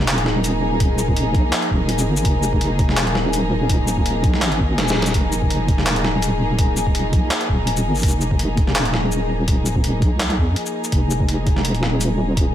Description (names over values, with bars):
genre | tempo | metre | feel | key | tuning
half-time drum and bass | 166 BPM | 4/4 | swing 54% on 16ths, half-time | F minor | A4 = 441 Hz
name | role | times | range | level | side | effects
warm studio string section | sustained chords | 0.0-12.5 s | F3 to Ab4 | -23 LUFS | left 1 dB | sidechain pumping
deep soft wobble bass | bass | 0.0-12.5 s | Eb1 to F2 | -20 LUFS | equal | chorus
boom bap sampler-style drum kit | drums | 0.0-12.4 s | handclaps, hi-hat, shaker, snare drum | -24 LUFS | equal | none
electronic kick drum | drums | 0.8-12.4 s | none | -19 LUFS | equal | none
room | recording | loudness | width
light reverb | none | -16 LUFS | side -11 dB against mid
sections
0.0-12.5 A section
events
drum fill 4.8-5.1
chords
0.0 Fm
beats
0.08 0.44 | 0.80 1.17 1.53 1.89 | 2.25 2.61 2.97 3.33 | 3.69 4.06 4.42 4.78 | 5.14 5.50 5.86 6.22 | 6.59 6.95 7.31 7.67 | 8.03 8.39 8.76 9.12 | 9.48 9.84 10.20 10.56 | 10.92 11.29 11.65 12.01 | 12.37